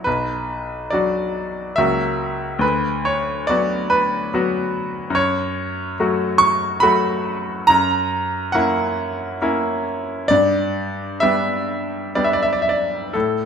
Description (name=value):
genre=classical, romantic character piece for solo piano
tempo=56-73 BPM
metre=3/4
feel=rubato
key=B minor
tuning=A4 = 440 Hz
part: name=bright grand piano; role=solo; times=0.0-13.5 s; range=B1 to C#6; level=-18 LUFS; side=equal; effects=none
room=moderate recital hall reverb, RT60 1.3 s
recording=minimal, uncompressed stereo recording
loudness=-18 LUFS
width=side -7 dB against mid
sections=0.0-13.5 A section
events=none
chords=0.1 Bm; 1.8 F#7/C#; 2.6 Bm/D; 5.2 F#m; 7.7 F#7; 10.3 G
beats=| 0.07 0.92 1.77 | 2.62 3.49 4.32 | 5.16 5.99 6.83 | 7.69 8.54 9.41 | 10.30 11.20 12.14 | 13.14